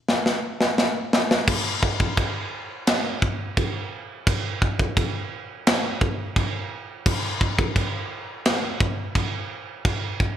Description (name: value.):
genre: metal.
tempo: 86 BPM.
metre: 4/4.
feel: straight.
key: none.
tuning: none.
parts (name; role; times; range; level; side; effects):
tight metal drum kit; drums; 0.1-10.4 s; china cymbal, crash cymbal, kick drum, snare drum; -22 LUFS; equal; none.
room: moderate scoring stage reverb, RT60 1.6 s.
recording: none.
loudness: -22 LUFS.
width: side -10 dB against mid.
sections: 0.0-1.5 A section; 1.5-10.4 B section.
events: drum fill 0.1-1.5.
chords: none.